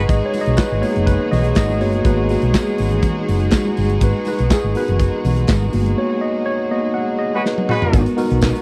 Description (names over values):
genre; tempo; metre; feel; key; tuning
disco; 122 BPM; 4/4; straight; unclear; A4 = 436 Hz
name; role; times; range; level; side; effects
tine electric piano; accompaniment; 0.0-8.6 s; A#3 to F#5; -23 LUFS; equal; overdrive
clear studio string section; sustained chords; 0.0-8.6 s; G#3 to G#4; -26 LUFS; equal; none
hollow-body short-scale fingered electric bass; bass; 0.0-8.5 s; F#1 to B1; -21 LUFS; equal; none
modern studio drum kit; drums; 0.1-8.6 s; handclaps, hi-hat, kick drum, snare drum, toms; -20 LUFS; equal; none
congas; percussion; 0.1-8.5 s; none; -30 LUFS; equal; none
tambourine; percussion; 0.1-8.5 s; none; -45 LUFS; equal; none
mellow horn section; stabs; 7.3-8.0 s; G#3 to B4; -22 LUFS; equal; none
room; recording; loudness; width
little or no reverb; dry, close 1970s-style studio recording; -18 LUFS; mono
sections
0.0-7.9 A section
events
tine electric piano solo 0.0-7.9; band accent 6.0-7.9; drum fill 7.4-7.9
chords
0.0 G#m7